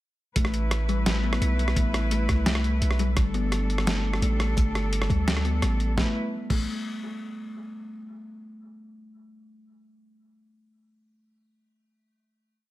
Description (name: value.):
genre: half-time drum and bass.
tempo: 171 BPM.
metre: 4/4.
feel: half-time.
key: unclear.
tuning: A4 = 439 Hz.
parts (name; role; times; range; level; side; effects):
warm studio cello section; sustained chords; 0.4-6.1 s; G3 to B4; -33 LUFS; equal; sidechain pumping.
kalimba; arpeggios; 0.4-6.7 s; G3 to B3; -32 LUFS; left 3 dB; vintage 12-bit sampler grit, dub echo.
long sustained 808-style bass; bass; 0.4-6.7 s; G1 to D2; -25 LUFS; equal; none.
boom bap sampler-style drum kit; drums; 0.4-6.6 s; crash cymbal, hi-hat, rim click, snare drum; -30 LUFS; equal; none.
electronic kick drum; drums; 0.4-6.6 s; none; -26 LUFS; equal; none.
room: light reverb.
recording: echo-heavy mix.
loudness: -23 LUFS.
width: side -16 dB against mid.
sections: 0.4-6.0 drop; 6.0-7.4 final chord.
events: drop 0.4-6.0.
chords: 0.4 Am; 3.2 Gsus2; 6.0 A5.